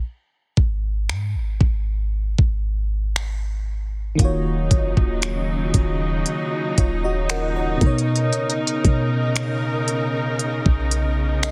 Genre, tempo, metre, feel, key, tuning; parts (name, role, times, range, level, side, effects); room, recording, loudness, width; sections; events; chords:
contemporary R&B; 58 BPM; 4/4; straight; Eb minor; A4 = 439 Hz
clean 808-style bass; bass; 0.0-11.5 s; Eb1 to B2; -25 LUFS; equal
trap drum kit; drums; 0.6-11.5 s; finger snaps, hi-hat, kick drum; -22 LUFS; equal; vintage 12-bit sampler grit, soft clipping on snare
FM electric piano; accompaniment; 4.2-11.5 s; B2 to Bb5; -28 LUFS; equal; chorus
rich studio string section; sustained chords; 4.2-11.5 s; Db3 to A#4; -28 LUFS; equal
digital ambience; dense, heavily limited modern master; -22 LUFS; mono
0.0-11.5 A section
FM electric piano fill 10.9-11.5
0.1 N.C.; 4.2 Ebm7; 7.8 Bmaj9